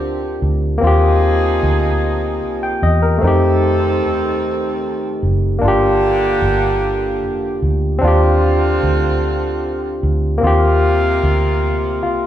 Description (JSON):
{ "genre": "slow six-eight R&B", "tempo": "50 BPM (dotted quarters)", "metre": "6/8", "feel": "straight", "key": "Eb major", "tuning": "A4 = 439 Hz", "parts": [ { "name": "barky tine electric piano", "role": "accompaniment", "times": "0.0-12.3 s", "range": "A3 to G5", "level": "-17 LUFS", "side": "left 1 dB", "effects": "overdrive" }, { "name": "warm horn section", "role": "stabs", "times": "0.0-12.3 s", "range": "C3 to A4", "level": "-23 LUFS", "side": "right 3 dB", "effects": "slapback echo" }, { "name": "vintage muted fingered electric bass", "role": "bass", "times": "0.0-12.3 s", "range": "F1 to F2", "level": "-17 LUFS", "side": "equal", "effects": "none" } ], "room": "moderate large studio reverb, RT60 1.4 s", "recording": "band playing live in one room", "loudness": "-14 LUFS", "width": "side -11 dB against mid", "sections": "0.0-12.3 A section", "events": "none", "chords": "0.0 Ebmaj13 (rootless); 0.8 Abmaj13; 3.2 F9; 5.6 Gm7; 8.0 Ebmaj13; 10.4 Cm11", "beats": "| 0.81 2.01 | 3.21 4.41 | 5.61 6.81 | 8.01 9.21 | 10.41 11.61" }